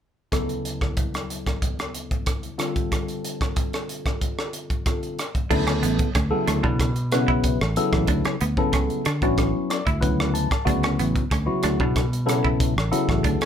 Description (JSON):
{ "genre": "electric jazz fusion", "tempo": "93 BPM", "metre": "4/4", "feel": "straight", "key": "D major", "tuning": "A4 = 438 Hz", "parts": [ { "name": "barky tine electric piano", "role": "accompaniment", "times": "0.3-13.5 s", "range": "D2 to A5", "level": "-25 LUFS", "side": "left 2 dB", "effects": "phaser" }, { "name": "crisp fusion drum kit", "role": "drums", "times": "0.3-13.5 s", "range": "crash cymbal, hi-hat, kick drum, rim click", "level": "-25 LUFS", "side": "equal", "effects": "none" }, { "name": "semi-hollow electric guitar", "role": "stabs", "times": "5.5-13.5 s", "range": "B3 to E4", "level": "-29 LUFS", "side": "right 6 dB", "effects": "lush chorus" }, { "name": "fingered electric bass", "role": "bass", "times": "5.5-13.4 s", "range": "A1 to D3", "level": "-24 LUFS", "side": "equal", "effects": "none" } ], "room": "little or no reverb", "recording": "none", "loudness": "-21 LUFS", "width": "side -9 dB against mid", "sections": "0.3-5.5 A section; 5.5-13.5 B section", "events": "tine electric piano fill 9.4-10.7", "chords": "0.3 Dmaj9; 2.6 F69/D; 5.2 N.C.; 5.5 Dmaj9" }